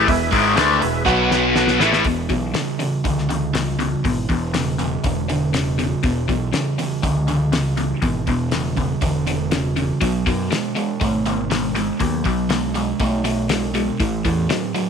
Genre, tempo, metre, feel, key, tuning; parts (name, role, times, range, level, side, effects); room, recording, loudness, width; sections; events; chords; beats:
classic rock; 121 BPM; 4/4; straight; E major; A4 = 439 Hz
bright upright piano; accompaniment; 0.0-2.0 s; F#4 to B5; -24 LUFS; right 12 dB
tonewheel organ; sustained chords; 0.0-1.8 s; B3 to F#5; -28 LUFS; equal; overdrive, chorus vibrato, slow rotary speaker
raw garage guitar; riff; 0.0-14.9 s; E2 to D4; -22 LUFS; left 10 dB; overdrive, phaser
sludgy distorted guitar; riff; 0.0-14.9 s; E2 to D4; -22 LUFS; right 10 dB; overdrive
overdriven picked electric bass; bass; 0.0-14.5 s; E1 to F#2; -26 LUFS; equal
damped 70s drum kit; drums; 0.1-14.9 s; hi-hat, kick drum, snare drum; -25 LUFS; left 2 dB
light reverb, studio reverb; 1960s-style stereo with parts hard left and right; -17 LUFS; side -7 dB against mid
0.0-2.1 A section; 2.1-14.9 B section
upright piano fill 0.6-2.1; drum fill 1.1-2.1
0.0 E; 1.1 B5; 1.8 E; 2.1 E5; 10.0 B5; 14.0 A5
| 0.08 0.57 1.06 1.56 | 2.06 2.55 3.05 3.55 | 4.05 4.55 5.04 5.54 | 6.04 6.54 7.04 7.53 | 8.03 8.53 9.02 9.52 | 10.02 10.51 11.01 11.51 | 12.01 12.50 13.00 13.50 | 13.99 14.49